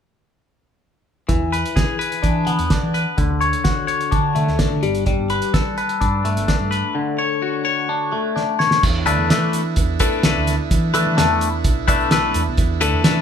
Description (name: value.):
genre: psychedelic rock.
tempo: 128 BPM.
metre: 4/4.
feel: straight.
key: unclear.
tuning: A4 = 440 Hz.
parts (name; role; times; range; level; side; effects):
twangy electric guitar; riff; 1.3-13.2 s; D3 to C#5; -19 LUFS; left 4 dB; phaser.
hollow-body short-scale picked electric bass; bass; 1.3-13.2 s; G1 to E3; -22 LUFS; right 1 dB; none.
cloth-damped thuddy drum kit; drums; 1.3-13.2 s; crash cymbal, hi-hat, kick drum, snare drum; -20 LUFS; right 1 dB; none.
combo organ; sustained chords; 8.8-13.2 s; B3 to A4; -27 LUFS; right 8 dB; spring reverb.
tube shaker; percussion; 8.8-13.2 s; none; -36 LUFS; right 10 dB; none.
room: light reverb.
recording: band playing live in one room.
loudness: -16 LUFS.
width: side -8 dB against mid.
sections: 1.3-8.8 A section; 8.8-13.2 B section.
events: drum fill 8.4-8.8.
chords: 1.3 E7; 3.2 Dmaj7; 4.8 Gadd9; 7.0 Dmaj7; 8.8 E7sus4.